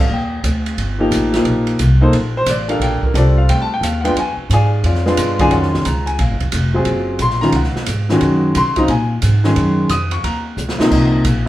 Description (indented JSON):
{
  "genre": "modal jazz",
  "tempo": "178 BPM",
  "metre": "4/4",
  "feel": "swing 65% on 8ths",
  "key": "Gb lydian from 5.5 s",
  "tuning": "A4 = 440 Hz",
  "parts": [
    { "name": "warm grand piano", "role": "accompaniment", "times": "0.0-11.5 s", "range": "Gb2 to Eb6", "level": "-16 LUFS", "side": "left 1 dB", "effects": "none" },
    { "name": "upright bass", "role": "bass", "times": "0.0-11.5 s", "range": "F1 to Db3", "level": "-17 LUFS", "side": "equal", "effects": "none" },
    { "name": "open jazz drum kit", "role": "drums", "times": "0.4-11.3 s", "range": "crash cymbal, hi-hat, kick drum, ride cymbal, snare drum", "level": "-23 LUFS", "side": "right 2 dB", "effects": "none" }
  ],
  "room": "moderate large studio reverb, RT60 0.9 s",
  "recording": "band playing live in one room",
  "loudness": "-13 LUFS",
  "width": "side -14 dB against mid",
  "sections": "0.0-5.5 A section; 5.5-11.5 A section",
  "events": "drum fill 10.6-10.9",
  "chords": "0.0 Ebmaj13; 4.2 Db7b9; 5.5 Gbmaj9; 10.9 Abadd9 (rootless)",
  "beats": "| 0.11 0.45 0.79 1.12 | 1.46 1.80 2.14 2.48 | 2.81 3.15 3.49 3.83 | 4.17 4.50 4.84 5.18 | 5.52 5.86 6.19 6.53 | 6.87 7.21 7.54 7.88 | 8.22 8.55 8.89 9.23 | 9.57 9.90 10.24 10.58 | 10.91 11.25"
}